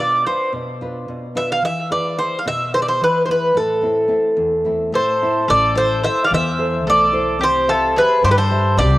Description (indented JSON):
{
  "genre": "greek folk, Greek bouzouki band",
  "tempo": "218 BPM (eighths)",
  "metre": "7/8",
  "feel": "straight",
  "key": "A minor",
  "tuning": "A4 = 440 Hz",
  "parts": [
    { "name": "Greek bouzouki", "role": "melody", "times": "0.0-9.0 s", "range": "A4 to F5", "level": "-16 LUFS", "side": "equal", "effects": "cassette tape, analog delay" },
    { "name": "nylon-string guitar", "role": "accompaniment", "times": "0.0-9.0 s", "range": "E2 to E5", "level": "-24 LUFS", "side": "equal", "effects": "none" },
    { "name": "mandolin", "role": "second line", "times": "4.9-9.0 s", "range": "F4 to D5", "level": "-24 LUFS", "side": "left 2 dB", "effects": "none" },
    { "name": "upright bass", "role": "bass", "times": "5.5-9.0 s", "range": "A1 to G2", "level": "-20 LUFS", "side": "equal", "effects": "none" }
  ],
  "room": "moderate lush hall reverb, RT60 2.5 s",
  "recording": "home recording on cassette",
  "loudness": "-15 LUFS",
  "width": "side -16 dB against mid",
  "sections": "0.0-5.5 A section; 5.5-9.0 B section",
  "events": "none",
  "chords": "0.0 Bdim; 1.6 E; 3.6 Am; 7.4 C"
}